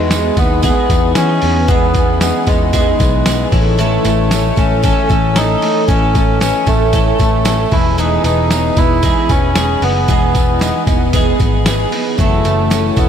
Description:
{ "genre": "jangly indie pop", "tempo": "114 BPM", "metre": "4/4", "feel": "straight", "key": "E major", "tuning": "A4 = 441 Hz", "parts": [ { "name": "melodica", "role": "melody", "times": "0.0-13.1 s", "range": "G#3 to E4", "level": "-17 LUFS", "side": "right 1 dB", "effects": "none" }, { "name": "combo organ", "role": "accompaniment", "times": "0.0-13.1 s", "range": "E3 to D#5", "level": "-23 LUFS", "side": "left 10 dB", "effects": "none" }, { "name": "picked twelve-string acoustic guitar", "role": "accompaniment", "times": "0.0-13.1 s", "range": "A2 to A4", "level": "-21 LUFS", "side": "right 8 dB", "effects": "none" }, { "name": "twelve-string electric guitar", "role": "arpeggios", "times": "0.0-13.1 s", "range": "E3 to A4", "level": "-20 LUFS", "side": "left 4 dB", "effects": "analog chorus, diffuse ambient delay" }, { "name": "vintage muted picked electric bass", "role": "bass", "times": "0.0-13.1 s", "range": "E1 to E3", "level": "-17 LUFS", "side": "equal", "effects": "none" }, { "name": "lo-fi sampler-style drum kit", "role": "drums", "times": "0.1-13.1 s", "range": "hi-hat, kick drum, snare drum", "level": "-16 LUFS", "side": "equal", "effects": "none" }, { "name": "tambourine", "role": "percussion", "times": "0.1-13.1 s", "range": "none", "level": "-29 LUFS", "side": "right 11 dB", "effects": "none" } ], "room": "moderate huge ambient reverb, RT60 6.7 s", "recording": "dreamy mix soaked in reverb", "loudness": "-11 LUFS", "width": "side -8 dB against mid", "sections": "0.0-13.1 A section", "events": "none", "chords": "0.0 Emaj7; 3.5 A; 7.7 Emaj7; 12.2 F#m7", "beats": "0.11 0.64 1.16 | 1.69 2.21 2.74 3.26 | 3.79 4.31 4.84 5.36 | 5.89 6.41 6.94 7.46 | 7.99 8.51 9.04 9.56 | 10.09 10.61 11.13 11.66 | 12.18 12.71" }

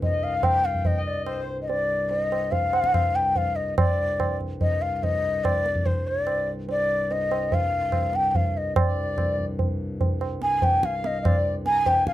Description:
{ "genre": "indian classical, Hindustani", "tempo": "144 BPM", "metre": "3/4", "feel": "straight", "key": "C raga darbari", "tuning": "A4 = 439 Hz", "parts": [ { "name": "breathy mellow bansuri", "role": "melody", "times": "0.0-12.1 s", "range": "C5 to Ab5", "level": "-24 LUFS", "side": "left 1 dB", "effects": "none" }, { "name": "pedal harmonium", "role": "drone", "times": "0.0-12.1 s", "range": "C2 to G2", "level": "-33 LUFS", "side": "left 1 dB", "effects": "none" }, { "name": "tabla", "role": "percussion", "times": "0.0-12.1 s", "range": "none", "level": "-26 LUFS", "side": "right 1 dB", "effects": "none" }, { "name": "hand-pumped harmonium", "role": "second line", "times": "0.1-1.6, 8.9-12.1 s", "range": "C5 to Bb5", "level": "-33 LUFS", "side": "left 1 dB", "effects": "none" } ], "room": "light reverb", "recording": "close, detailed microphones", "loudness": "-22 LUFS", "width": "side -14 dB against mid", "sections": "0.0-3.8 A section; 3.8-12.1 B section", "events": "none", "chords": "none", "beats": "| 0.03 0.44 0.86 | 1.28 1.70 2.11 | 2.53 2.95 3.37 | 3.78 4.20 4.62 | 5.03 5.45 5.86 | 6.28 6.69 7.11 | 7.53 7.94 8.35 | 8.77 9.18 9.60 | 10.01 10.42 10.84 | 11.25 11.66 12.08" }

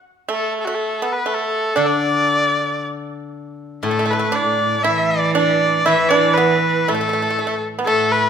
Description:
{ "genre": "chinese traditional, Chinese chamber ensemble", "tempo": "59 BPM", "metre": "2/4", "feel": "rubato", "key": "unclear", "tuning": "A4 = 437 Hz", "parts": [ { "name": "rich erhu", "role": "melody", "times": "0.3-8.3 s", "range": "F#4 to E5", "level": "-19 LUFS", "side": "left 2 dB", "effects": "none" }, { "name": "pipa", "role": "second line", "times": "0.3-8.3 s", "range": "A3 to E4", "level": "-21 LUFS", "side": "right 4 dB", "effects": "none" }, { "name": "steel-string zither", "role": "accompaniment", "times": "1.8-8.3 s", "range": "A2 to E3", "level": "-25 LUFS", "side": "left 2 dB", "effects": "none" }, { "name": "clear cello", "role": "second line", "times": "3.8-8.3 s", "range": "A2 to E3", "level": "-23 LUFS", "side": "right 5 dB", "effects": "none" } ], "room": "moderate scoring stage reverb, RT60 1.5 s", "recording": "minimal, uncompressed stereo recording", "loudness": "-16 LUFS", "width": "side -7 dB against mid", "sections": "0.0-3.8 A section; 3.8-8.3 B section", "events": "none", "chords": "none", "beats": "0.80 | 1.79 2.81 | 3.85 4.86 | 5.87 6.88 | 7.88" }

